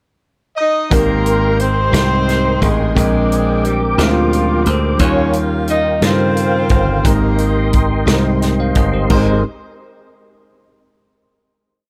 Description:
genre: slow gospel.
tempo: 58 BPM (dotted quarters).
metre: 6/8.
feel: straight.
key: Ab major.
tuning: A4 = 440 Hz.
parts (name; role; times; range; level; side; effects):
breathy tenor saxophone; melody; 0.6-9.4 s; F3 to Eb4; -23 LUFS; equal; none.
dark horn section; melody; 0.6-9.4 s; Ab3 to Eb5; -23 LUFS; equal; none.
bell-like tine electric piano; accompaniment; 0.9-9.4 s; Ab1 to C6; -20 LUFS; equal; none.
mellow tonewheel organ; sustained chords; 0.9-9.4 s; Ab3 to D6; -25 LUFS; equal; slow rotary speaker, chorus vibrato.
dry thumbed slap bass; bass; 0.9-9.4 s; G1 to G2; -20 LUFS; equal; none.
natural country drum kit; drums; 0.9-9.3 s; crash cymbal, hi-hat, kick drum, snare drum; -21 LUFS; equal; none.
room: little or no reverb.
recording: none.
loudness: -15 LUFS.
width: mono.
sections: 0.0-0.9 pickup bar; 0.9-9.1 A section; 9.1-11.2 final chord.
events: none.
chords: 0.0 N.C.; 0.9 Abmaj9; 3.0 Bb13; 5.0 Eb13; 7.1 Abmaj9.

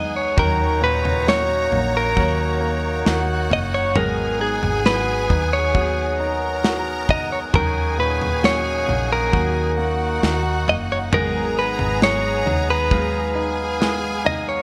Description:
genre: pop ballad.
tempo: 67 BPM.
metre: 4/4.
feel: straight.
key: Eb minor.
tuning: A4 = 440 Hz.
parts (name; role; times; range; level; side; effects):
direct-recorded clean electric guitar; melody; 0.0-14.6 s; Ab4 to Eb5; -24 LUFS; equal; tremolo.
bright studio violin section; second line; 0.0-14.6 s; Gb4 to Bb5; -30 LUFS; equal; none.
clear concert grand piano; accompaniment; 0.0-14.6 s; Bb2 to Gb4; -32 LUFS; equal; none.
hand-pumped harmonium; sustained chords; 0.0-14.6 s; Cb4 to Gb5; -32 LUFS; equal; none.
fingerpicked steel-string acoustic guitar; arpeggios; 0.0-14.6 s; Ab2 to Ab4; -33 LUFS; equal; none.
hollow-body short-scale fingered electric bass; bass; 0.0-14.6 s; Gb1 to Eb2; -28 LUFS; equal; none.
modern studio drum kit; drums; 0.4-14.5 s; kick drum, snare drum, toms; -25 LUFS; equal; none.
room: light reverb, small room ambience.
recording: none.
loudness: -20 LUFS.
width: mono.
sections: 0.0-14.6 A section.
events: none.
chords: 0.4 Ebm7; 4.0 Abm7; 7.5 Ebm7; 11.1 Abm7.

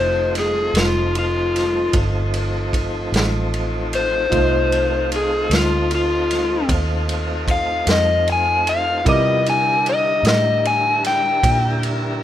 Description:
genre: slow blues.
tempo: 51 BPM (dotted quarters).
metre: 12/8.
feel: straight.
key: F mixolydian.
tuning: A4 = 440 Hz.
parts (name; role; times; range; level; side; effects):
overdriven slide guitar; melody; 0.0-11.8 s; F4 to Ab5; -18 LUFS; left 3 dB; none.
warm grand piano; accompaniment; 0.0-12.2 s; G3 to D6; -27 LUFS; right 6 dB; none.
tonewheel organ; sustained chords; 0.0-12.2 s; D3 to Eb5; -25 LUFS; equal; slow rotary speaker.
vintage muted fingered electric bass; bass; 0.0-12.2 s; F1 to C3; -23 LUFS; right 1 dB; none.
raw garage drum kit; drums; 0.4-12.0 s; kick drum, ride cymbal, snare drum; -24 LUFS; right 1 dB; none.
room: moderate studio reverb, RT60 0.6 s.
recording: rough home demo mix.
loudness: -16 LUFS.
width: side -11 dB against mid.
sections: 0.0-12.2 A section.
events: electric slide guitar solo 0.0-12.2.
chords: 0.0 F7; 9.1 C7.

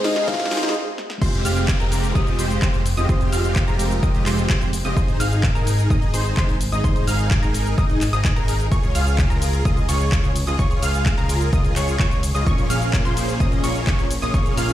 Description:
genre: EDM, festival progressive house.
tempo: 128 BPM.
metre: 4/4.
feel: straight.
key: F minor.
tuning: A4 = 439 Hz.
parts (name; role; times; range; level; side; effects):
soft struck synth lead; melody; 0.0-0.7 s; Eb5 to F5; -25 LUFS; left 2 dB; chorus, tape echo.
picked steel-string acoustic guitar; accompaniment; 0.0-0.7 s; Ab2 to Ab4; -30 LUFS; right 4 dB; sidechain pumping, tape echo.
lush unison pad; sustained chords; 0.0-0.7 s; none; barely audible; none; none.
supersaw chords; riff; 0.0-14.7 s; Ab3 to F5; -25 LUFS; equal; ensemble chorus, sidechain pumping, tape echo.
fat analog bass; bass; 0.0-14.7 s; F1 to Db2; -22 LUFS; equal; tube saturation, sidechain pumping.
house drum kit; drums; 0.0-14.7 s; crash cymbal, handclaps, hi-hat, ride cymbal, shaker, snare drum; -28 LUFS; left 1 dB; none.
riser and downlifter; sound effects; 0.0-5.0 s; none; -34 LUFS; left 3 dB; none.
electronic kick drum; drums; 0.3-14.4 s; none; -21 LUFS; equal; none.
wide unison pluck; arpeggios; 1.2-14.7 s; Bb5 to F6; -30 LUFS; equal; cassette tape, sidechain pumping, tape echo.
room: light reverb.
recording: played on a big sound system in a bare room, large studio reverb, high-pass filter.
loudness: -17 LUFS.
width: side -13 dB against mid.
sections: 0.0-1.2 A section; 1.2-14.7 B section.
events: build-up 0.0-1.2; drum fill 0.0-0.7, 1.0; riser 0.0-0.7; stop 0.7-1.2; drop 1.2-14.7.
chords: 0.0 Ab; 1.2 Fmadd9; 5.0 Ab; 8.7 Db; 12.5 Bbm7.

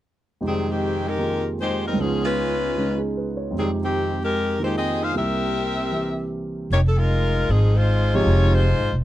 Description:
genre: jazz, big band swing.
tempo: 152 BPM.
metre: 4/4.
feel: swing 65% on 8ths.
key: F minor.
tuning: A4 = 439 Hz.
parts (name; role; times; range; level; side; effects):
warm concert grand piano; accompaniment; 0.4-8.6 s; C2 to Db5; -24 LUFS; right 2 dB; none.
clear saxophone section; melody; 0.5-8.9 s; Eb3 to F5; -23 LUFS; left 2 dB; none.
upright bass; bass; 6.7-9.0 s; E1 to Ab1; -18 LUFS; equal; none.
room: light reverb.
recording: dry, close 1970s-style studio recording.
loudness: -20 LUFS.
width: side -14 dB against mid.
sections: 0.4-6.7 A section; 6.7-9.0 B section.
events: none.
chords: 0.4 Fm9; 2.0 Db7; 3.6 Fm9; 5.1 C7; 6.7 Fm7.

